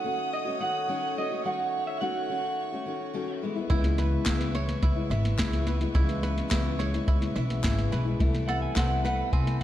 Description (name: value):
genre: indie folk with a building arrangement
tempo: 107 BPM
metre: 4/4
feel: straight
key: unclear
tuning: A4 = 440 Hz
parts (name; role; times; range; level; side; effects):
- electric guitar through a small old amp; melody; 0.0-3.4, 8.5-9.6 s; D#5 to G#5; -30 LUFS; right 4 dB; tremolo
- picked steel-string acoustic guitar; accompaniment; 0.0-9.6 s; C3 to F#4; -32 LUFS; left 5 dB; none
- warm chamber string section; sustained chords; 0.0-9.6 s; A4 to D#6; -41 LUFS; right 1 dB; none
- dark baby grand piano; accompaniment; 3.7-9.6 s; C2 to G#5; -36 LUFS; right 2 dB; none
- bluegrass banjo; arpeggios; 3.7-9.6 s; C4 to E5; -38 LUFS; right 6 dB; slapback echo
- upright bass; bass; 3.7-9.6 s; G#1 to C#3; -29 LUFS; equal; none
- soft vintage rhythm box; drums; 3.7-9.6 s; kick drum, snare drum; -28 LUFS; equal; none
- group handclap; percussion; 4.3-8.9 s; none; -41 LUFS; left 3 dB; none
room: light reverb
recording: dark, warm production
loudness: -25 LUFS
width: side -12 dB against mid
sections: 0.0-9.6 A section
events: grand piano fill 6.5-8.2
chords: 0.0 D#m7b5; 3.4 C#m7; 8.2 Amadd9/C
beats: 0.33 0.89 | 1.45 2.02 2.58 3.14 | 3.70 4.27 4.83 5.39 | 5.95 6.51 7.08 7.64 | 8.20 8.76 9.32